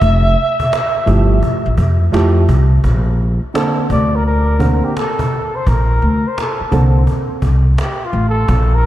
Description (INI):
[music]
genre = hip hop, jazz-hop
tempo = 85 BPM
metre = 4/4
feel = swing 64% on 16ths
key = Bb major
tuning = A4 = 439 Hz
[part]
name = trumpet with bucket mute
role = melody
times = 0.0-8.9 s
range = F4 to E5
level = -20 LUFS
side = equal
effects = tape echo
[part]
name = upright bass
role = bass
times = 0.0-8.9 s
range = F1 to F2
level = -13 LUFS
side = equal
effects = none
[part]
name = cajon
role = drums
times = 0.0-8.7 s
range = none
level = -22 LUFS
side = equal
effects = none
[part]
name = dark upright piano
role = accompaniment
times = 1.1-7.0 s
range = D3 to Bb4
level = -19 LUFS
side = right 2 dB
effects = none
[sound]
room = moderate lush hall reverb, RT60 2.7 s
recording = dreamy mix soaked in reverb, lossy compression artefacts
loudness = -12 LUFS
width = side -14 dB against mid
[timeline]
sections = 0.0-2.8 A section; 2.8-8.9 B section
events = muted trumpet solo 2.8-8.9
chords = 0.0 Fmaj9; 2.8 Bbmaj9